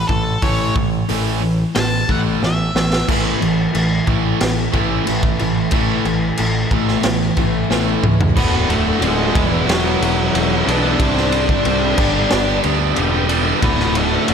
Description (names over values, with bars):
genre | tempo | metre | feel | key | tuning
quiet-loud alternative rock | 91 BPM | 4/4 | straight | unclear | A4 = 441 Hz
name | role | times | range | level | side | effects
octave-fuzz lead guitar | melody | 0.0-3.1, 8.4-14.3 s | F#3 to A5 | -22 LUFS | left 1 dB | distortion, slapback echo
overdriven electric guitar | riff | 0.0-14.3 s | D2 to C5 | -23 LUFS | left 10 dB | none
overdriven electric guitar | riff | 0.0-14.3 s | D2 to C5 | -22 LUFS | right 11 dB | none
growling picked electric bass | bass | 0.0-14.3 s | D1 to D2 | -22 LUFS | equal | overdrive
raw garage drum kit | drums | 0.1-14.3 s | crash cymbal, hi-hat, kick drum, ride cymbal, snare drum, toms | -20 LUFS | equal | none
overdriven semi-hollow guitar | riff | 3.1-14.3 s | D2 to C4 | -22 LUFS | equal | slapback echo
room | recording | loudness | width
moderate lush hall reverb, RT60 2.7 s | big arena sound | -14 LUFS | side -7 dB against mid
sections
0.0-3.1 A section; 3.1-8.4 B section; 8.4-14.3 C section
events
lead electric guitar solo 0.0-3.1; drum fill 2.4-3.1, 7.7-8.4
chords
0.0 A5; 8.4 D; 9.3 Eadd9; 11.0 Cadd9; 12.0 G; 13.6 D